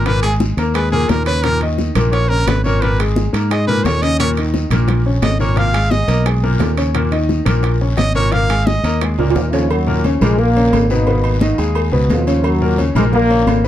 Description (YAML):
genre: latin, salsa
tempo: 174 BPM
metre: 4/4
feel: straight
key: unclear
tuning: A4 = 440 Hz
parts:
  - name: brilliant trumpet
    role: melody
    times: 0.0-9.0 s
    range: Ab4 to F5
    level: -20 LUFS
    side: right 1 dB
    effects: none
  - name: clear grand piano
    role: accompaniment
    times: 0.0-13.7 s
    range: Bb2 to Bb5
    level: -19 LUFS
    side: left 2 dB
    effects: none
  - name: fingered electric bass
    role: bass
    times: 0.0-13.7 s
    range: Ab1 to Ab2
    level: -17 LUFS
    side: equal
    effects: none
  - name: bongos and cowbell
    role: percussion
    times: 0.1-13.7 s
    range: none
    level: -27 LUFS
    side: left 5 dB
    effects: none
  - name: congas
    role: percussion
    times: 0.1-13.7 s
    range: none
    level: -23 LUFS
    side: left 1 dB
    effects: none
  - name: guiro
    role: percussion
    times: 0.1-13.7 s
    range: none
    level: -35 LUFS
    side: left 3 dB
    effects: none
  - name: timbales and agogo bells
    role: percussion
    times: 0.1-13.6 s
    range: none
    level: -25 LUFS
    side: right 6 dB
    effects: none
  - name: warm trombone section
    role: melody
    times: 9.4-13.7 s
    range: Gb2 to F4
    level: -18 LUFS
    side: equal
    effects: tape echo
room: light reverb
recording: dark, warm production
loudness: -13 LUFS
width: side -12 dB against mid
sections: 0.0-9.7 A section; 9.7-13.7 B section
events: trumpet solo 0.0-9.7; drum fill 9.2-9.7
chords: 0.0 Absus2; 5.6 Abmadd9; 6.9 Eb5; 9.7 Ebm7; 11.1 Abm; 12.4 Ebm7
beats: | 0.06 0.41 0.75 1.10 | 1.44 1.78 2.13 2.47 | 2.82 3.16 3.50 3.85 | 4.19 4.54 4.88 5.22 | 5.57 5.91 6.26 6.60 | 6.95 7.29 7.63 7.98 | 8.32 8.66 9.01 9.35 | 9.70 10.04 10.38 10.73 | 11.07 11.41 11.76 12.10 | 12.44 12.79 13.13 13.47